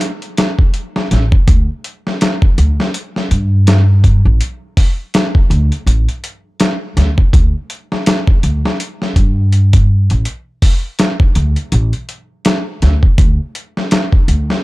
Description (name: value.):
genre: trip hop.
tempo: 82 BPM.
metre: 4/4.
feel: swing 58% on 16ths.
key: unclear.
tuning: A4 = 439 Hz.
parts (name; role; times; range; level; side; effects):
dusty soul sampler-style drum kit; drums; 0.0-14.6 s; hi-hat, kick drum, snare drum; -12 LUFS; equal; overdrive.
upright bass; bass; 1.1-14.5 s; A1 to G2; -11 LUFS; equal; none.
room: little or no reverb.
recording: dark, warm production.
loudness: -11 LUFS.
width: side -21 dB against mid.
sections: 0.0-14.6 A section.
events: none.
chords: none.